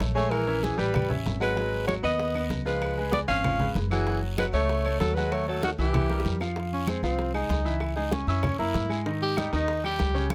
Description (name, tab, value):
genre	Afro-Cuban jazz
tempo	192 BPM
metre	4/4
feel	straight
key	C# minor, F minor from 6.6 s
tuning	A4 = 439 Hz
part	clear baby grand piano	accompaniment	0.0-10.3 s	Db3 to Fb6	-34 LUFS	equal	none
part	upright bass	bass	0.0-10.3 s	F#1 to Ab2	-32 LUFS	equal	none
part	bongos	percussion	0.0-10.3 s	none	-40 LUFS	equal	none
part	congas	percussion	0.0-10.3 s	none	-34 LUFS	equal	none
part	guiro	percussion	0.0-10.3 s	none	-46 LUFS	equal	none
part	breathy alto saxophone	melody	0.1-6.4 s	F#4 to E#5	-31 LUFS	equal	none
part	clear tenor saxophone	second line	0.2-10.3 s	D#3 to G4	-34 LUFS	equal	none
part	claves	percussion	0.3-10.3 s	none	-46 LUFS	equal	none
room	light reverb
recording	close, detailed microphones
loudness	-27 LUFS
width	mono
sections	0.0-6.6 A section; 6.6-10.3 B section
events	drum fill 6.1-6.6; tenor saxophone solo 6.6-10.3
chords	0.3 A#m7b5; 0.9 A7; 1.6 G#m7; 2.8 C#7; 4.1 F#m; 5.3 D#m7b5; 5.9 C7; 6.6 Fm7; 7.8 Dbm; 8.4 Gb9; 9.1 Ab5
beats	0.01 | 0.32 0.64 0.95 1.26 | 1.57 1.89 2.20 2.51 | 2.82 3.13 3.45 3.76 | 4.07 4.38 4.69 5.01 | 5.32 5.63 5.94 6.25 | 6.57 6.88 7.19 7.50 | 7.82 8.13 8.44 8.75 | 9.06 9.38 9.69 10.00 | 10.31